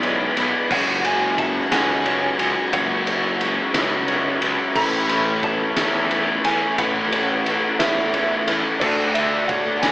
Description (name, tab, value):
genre	post-rock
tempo	59 BPM (dotted quarters)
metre	6/8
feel	straight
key	A major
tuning	A4 = 440 Hz
part	chorused pulse-width pad	sustained chords	0.0-9.9 s	G#3 to C#6	-30 LUFS	equal	none
part	felt-muted upright piano	arpeggios	0.0-9.9 s	A4 to F#5	-30 LUFS	equal	none
part	twelve-string electric guitar	arpeggios	0.0-9.9 s	A2 to D4	-35 LUFS	equal	none
part	fuzz guitar	riff	0.0-9.9 s	A2 to F#4	-22 LUFS	left 1 dB	distortion
part	fuzz picked electric bass	bass	0.0-9.9 s	F#1 to E2	-26 LUFS	equal	overdrive
part	oversized low-tuned drum kit	drums	0.0-9.9 s	crash cymbal, kick drum, ride cymbal, snare drum	-23 LUFS	equal	none
part	electric slide guitar	melody	0.7-9.9 s	D5 to B5	-25 LUFS	right 1 dB	analog delay
room	moderate studio reverb, RT60 0.6 s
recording	AM radio sound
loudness	-17 LUFS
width	side -19 dB against mid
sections	0.0-9.9 A section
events	none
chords	0.0 E; 0.7 F#sus2; 4.8 A; 8.8 D